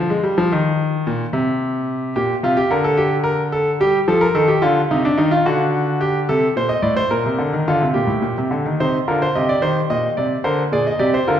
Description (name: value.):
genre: classical, baroque-style 3-part fugue for grand piano.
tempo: 72 BPM (dotted quarters).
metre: 12/8.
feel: straight.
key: C minor.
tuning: A4 = 439 Hz.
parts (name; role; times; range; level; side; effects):
bright concert grand piano; solo; 0.0-11.4 s; A2 to Eb5; -16 LUFS; equal; none.
room: wet recital hall reverb, RT60 1.6 s.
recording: heard from further back in the room.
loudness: -16 LUFS.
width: side -9 dB against mid.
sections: 0.0-8.8 A section; 8.8-11.4 B section.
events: none.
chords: 0.0 N.C.; 2.2 Gm/Bb; 3.8 A7(b5, no3); 5.5 D7; 7.1 Gm/Bb; 8.8 Cm; 10.4 Dm7b5.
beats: 0.51 1.32 | 2.15 2.98 3.80 4.63 | 5.46 6.29 7.11 7.95 | 8.79 9.62 10.45 11.28.